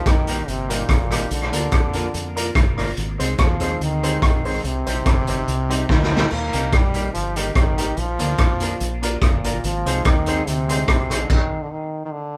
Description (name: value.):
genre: ska.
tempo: 144 BPM.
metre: 4/4.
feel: swing 53% on 8ths.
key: unclear.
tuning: A4 = 440 Hz.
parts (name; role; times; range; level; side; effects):
bright trombone; melody; 0.0-12.4 s; Bb2 to Bb3; -28 LUFS; equal; none.
fingered electric bass; bass; 0.0-11.2 s; G1 to F2; -28 LUFS; equal; none.
raw garage drum kit; drums; 0.1-11.4 s; crash cymbal, hi-hat, kick drum, rim click, snare drum, splash cymbal; -22 LUFS; equal; none.
electric guitar with an envelope filter; accompaniment; 0.3-11.2 s; G3 to Bb4; -33 LUFS; equal; spring reverb, tape echo.
clear upright piano; stabs; 0.3-11.2 s; D4 to C5; -32 LUFS; equal; none.
room: moderate small room reverb, RT60 0.5 s.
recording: band playing live in one room.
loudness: -21 LUFS.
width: mono.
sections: 0.0-12.4 A section.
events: drum fill 5.9-6.3; stop 11.3-12.4.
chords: 0.0 Eb; 1.3 Bb; 3.0 Ab; 4.6 Cm; 6.3 Eb; 8.0 Bb; 9.6 Ab; 11.3 N.C..